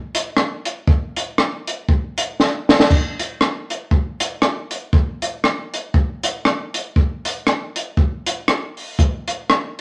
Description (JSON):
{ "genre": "ska", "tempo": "118 BPM", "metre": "4/4", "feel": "swing 57% on 8ths", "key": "none", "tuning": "none", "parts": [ { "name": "compact cocktail drum kit", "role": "drums", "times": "0.1-9.6 s", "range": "hi-hat, kick drum, rim click, snare drum, splash cymbal", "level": "-19 LUFS", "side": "equal", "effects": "none" } ], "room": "moderate studio reverb, RT60 0.7 s", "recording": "none", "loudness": "-20 LUFS", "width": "mono", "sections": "0.0-9.8 A section", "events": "drum fill 2.4-2.9", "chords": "none", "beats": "0.36 | 0.87 1.38 1.89 2.40 | 2.90 3.41 3.92 4.43 | 4.93 5.44 5.95 6.46 | 6.96 7.47 7.98 8.48 | 8.99 9.50" }